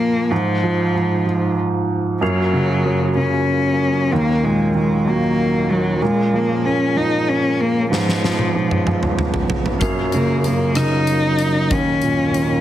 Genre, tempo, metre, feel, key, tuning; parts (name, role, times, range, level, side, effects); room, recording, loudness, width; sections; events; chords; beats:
six-eight pop ballad; 63 BPM (dotted quarters); 6/8; straight; F# major; A4 = 440 Hz
rich cello; melody; 0.0-12.6 s; E#3 to D#4; -19 LUFS; left 2 dB
clear upright piano; accompaniment; 0.0-12.6 s; D#2 to F#3; -19 LUFS; right 2 dB
percussive tonewheel organ; sustained chords; 2.2-12.6 s; F#3 to B4; -25 LUFS; left 1 dB; chorus vibrato, fast rotary speaker
huge arena drum kit; drums; 7.9-12.5 s; hi-hat, kick drum, rim click, snare drum, toms; -23 LUFS; equal
light reverb, small room ambience; heavily compressed radio sound; -16 LUFS; side -12 dB against mid
0.0-12.6 A section
drum fill 7.9-9.8
0.3 Fm/Ab; 2.2 F#maj7; 4.1 D#m7; 6.0 A#m7; 7.9 C#7/G#; 9.8 F#maj7; 11.7 D#m7
| 0.31 1.26 | 2.21 3.16 | 4.11 5.06 | 6.01 6.96 | 7.91 8.86 | 9.81 10.76 | 11.71